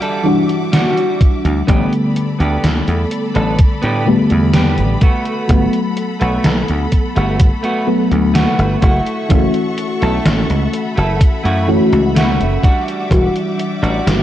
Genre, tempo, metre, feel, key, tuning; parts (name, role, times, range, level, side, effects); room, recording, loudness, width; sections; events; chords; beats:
vaporwave; 63 BPM; 4/4; straight; G lydian; A4 = 439 Hz
mellow FM electric piano; accompaniment; 0.0-14.2 s; D3 to F#4; -17 LUFS; left 1 dB; tremolo, wide subtle chorus, tape echo
bright studio string section; sustained chords; 0.0-14.2 s; G3 to D6; -26 LUFS; left 2 dB
clean electric guitar; riff; 0.0-14.1 s; G3 to A4; -22 LUFS; right 2 dB; wide subtle chorus, tape echo
gated 80s digital drum machine; drums; 0.0-14.2 s; hi-hat, snare drum; -18 LUFS; equal; gated reverb, gated reverb snare
electronic kick drum; drums; 1.2-13.3 s; -12 LUFS; equal
dry thumbed slap bass; bass; 1.4-14.2 s; E1 to A2; -16 LUFS; equal; tube saturation
moderate concert hall reverb, RT60 2.5 s; cassette tape; -12 LUFS; side -12 dB against mid
0.0-14.2 A section
0.0 Em9; 1.7 A9sus4; 5.0 Gmaj9; 8.8 F#m7; 12.6 Em9
0.73 | 1.68 2.64 3.59 4.54 | 5.49 6.45 7.40 8.35 | 9.30 10.26 11.21 12.16 | 13.11 14.06